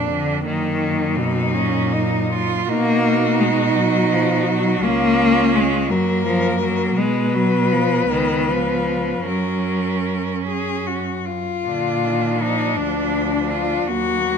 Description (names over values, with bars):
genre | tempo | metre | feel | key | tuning
classical, lyrical piece for cello ensemble | 49-57 BPM (dotted quarters) | 6/8 | rubato | unclear | A4 = 440 Hz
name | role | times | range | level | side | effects
rich cello | melody | 0.0-14.4 s | D4 to Cb5 | -23 LUFS | left 8 dB | none
rich cello | second line | 0.0-14.4 s | A#3 to E#4 | -23 LUFS | right 10 dB | none
rich cello | accompaniment | 0.0-14.4 s | A#2 to A#3 | -21 LUFS | left 3 dB | none
warm cello | bass | 0.0-14.4 s | C#2 to Cb3 | -25 LUFS | right 3 dB | none
room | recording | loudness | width
moderate recital hall reverb, RT60 1.4 s | close, detailed microphones | -17 LUFS | side -6 dB against mid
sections
0.0-11.7 A section; 11.7-14.4 B section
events
none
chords
0.5 D#m/F#; 2.7 Bmaj7#11; 4.8 C#; 5.9 F#; 7.0 Fdim/Cb; 8.1 C#7; 9.3 F#; 11.7 A#